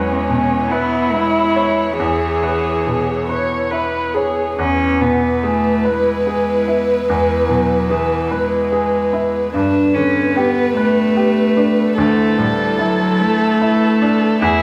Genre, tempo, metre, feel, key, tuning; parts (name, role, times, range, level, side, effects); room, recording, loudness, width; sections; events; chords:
neoclassical piano and strings; 49 BPM (dotted quarters); 6/8; rubato; A4 = 438 Hz
warm cello; second line; 0.0-14.6 s; E3 to E4; -21 LUFS; equal
bright baby grand piano; accompaniment; 0.0-14.6 s; D2 to C#5; -23 LUFS; equal
dark viola; accompaniment; 0.0-4.6 s; C#4 to C#5; -21 LUFS; equal
warm chamber string section; sustained chords; 0.0-14.6 s; D3 to C#5; -29 LUFS; equal
dark violin; melody; 4.6-14.6 s; G#4 to B4; -21 LUFS; equal
wet large studio reverb, RT60 0.9 s; band playing live in one room; -16 LUFS; mono
0.0-4.6 A section; 4.6-14.6 B section
0.0 E6; 4.6 E; 9.5 Gadd9; 12.0 Dsus2